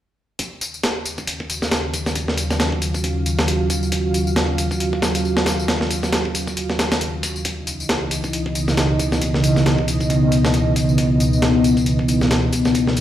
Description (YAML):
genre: breakbeat, breaks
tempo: 136 BPM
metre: 4/4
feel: swing 57% on 16ths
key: unclear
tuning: A4 = 440 Hz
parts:
  - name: dark analog pad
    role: sustained chords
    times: 1.3-13.0 s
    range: Db3 to F5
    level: -18 LUFS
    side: equal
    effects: chorus, sidechain pumping
  - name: breakbeat sampler-style drum kit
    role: drums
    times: 0.4-13.0 s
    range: hi-hat, kick drum, snare drum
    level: -22 LUFS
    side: equal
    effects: high-pass filter on hats, high-pass filter on kick, high-pass filter on snare, high-pass filter on room
  - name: tambourine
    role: drums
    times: 0.4-13.0 s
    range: none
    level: -31 LUFS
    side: left 4 dB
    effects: overdrive
room: moderate digital room reverb, RT60 1.3 s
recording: played on a big sound system in a bare room, stone room reverb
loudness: -17 LUFS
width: side -12 dB against mid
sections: 0.4-13.0 A section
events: none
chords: 0.4 Ebm9; 7.5 Dbm9